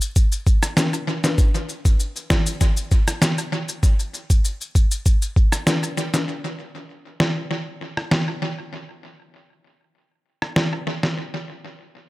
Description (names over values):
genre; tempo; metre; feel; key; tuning
dancehall; 98 BPM; 4/4; straight; none; none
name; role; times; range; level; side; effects
maracas and timbales; percussion; 0.0-6.3 s; none; -28 LUFS; left 3 dB; tape echo
lo-fi sampler-style drum kit; drums; 0.2-11.2 s; kick drum, rim click, snare drum; -19 LUFS; equal; tape echo
room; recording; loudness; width
light reverb, small room ambience; echo-heavy mix; -19 LUFS; side -19 dB against mid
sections
0.0-6.3 A section; 6.3-12.1 B section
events
none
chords
none